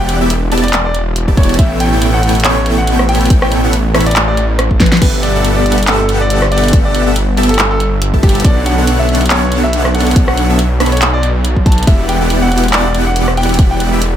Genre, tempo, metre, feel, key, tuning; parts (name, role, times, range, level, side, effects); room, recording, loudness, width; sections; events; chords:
future bass; 140 BPM; 4/4; swing 56% on 16ths, half-time; G lydian; A4 = 440 Hz
bright baby grand piano; melody; 0.0-13.9 s; G4 to A5; -19 LUFS; left 1 dB; sidechain pumping, digital delay
dense compressed supersaw; riff; 0.0-14.0 s; B3 to B5; -16 LUFS; equal; sidechain pumping
wide detuned saw bass; bass; 0.0-14.2 s; E1 to B1; -14 LUFS; equal; chorus, sidechain pumping
pop drum kit; drums; 0.1-14.1 s; crash cymbal, handclaps, hi-hat, ride cymbal, rim click, snare drum; -17 LUFS; equal
electronic kick drum; drums; 1.3-13.7 s; -10 LUFS; equal
digital ambience; -9 LUFS; side -10 dB against mid
0.0-14.2 A section
drum fill 4.8
0.0 Em9; 1.6 A9; 5.0 Gmaj13; 8.4 Bm9; 11.9 Em9